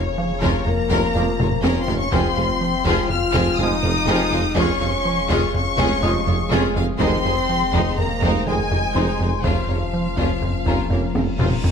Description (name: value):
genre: cinematic, hybrid orchestral and electronic film score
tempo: 123 BPM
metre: 5/4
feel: straight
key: unclear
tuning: A4 = 437 Hz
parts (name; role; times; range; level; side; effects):
- rich studio violin section; melody; 0.0-11.6 s; Db5 to F6; -25 LUFS; left 3 dB; none
- dark analog pad; sustained chords; 0.0-11.7 s; Eb3 to F5; -31 LUFS; equal; chorus, phaser
- mellow French horn section; sustained chords; 0.0-11.6 s; Db3 to F4; -27 LUFS; left 4 dB; none
- rubbery square bass; riff; 0.0-11.7 s; F2 to F3; -26 LUFS; right 2 dB; none
- mellow tuba; bass; 0.0-11.7 s; F1; -30 LUFS; right 5 dB; none
- sub bass with octave; bass; 0.0-11.7 s; F1; -30 LUFS; left 1 dB; none
- felt-muted upright piano; texture; 0.2-11.7 s; C5 to Eb6; -34 LUFS; left 4 dB; ping-pong delay
- warm symphonic violin section; second line; 0.4-11.7 s; C4 to F5; -28 LUFS; left 3 dB; none
- rich symphonic viola section; accompaniment; 0.4-11.7 s; F3 to F4; -28 LUFS; right 1 dB; none
- clear symphonic cello section; bass; 0.4-11.7 s; F2; -29 LUFS; right 2 dB; none
- rich symphonic double bass section; bass; 0.4-11.7 s; F1; -28 LUFS; right 2 dB; none
- solo taiko drums; drums; 0.4-11.7 s; none; -26 LUFS; left 1 dB; none
- warm trombone section; sustained chords; 1.1-11.1 s; Db3 to Bb3; -30 LUFS; right 5 dB; none
- reverse cymbal; sound effects; 11.1-11.7 s; none; -36 LUFS; left 1 dB; none
room: moderate scoring stage reverb, RT60 2.0 s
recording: close, detailed microphones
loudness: -17 LUFS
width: side -7 dB against mid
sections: 0.0-11.7 A section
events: drum fill 1.4-2.1, 11.2-11.7; reverse cymbal 11.1-11.7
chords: 0.0 Bbm/F; 2.1 Fm; 4.6 Db/F; 7.0 Ab/F; 9.4 Bbm/F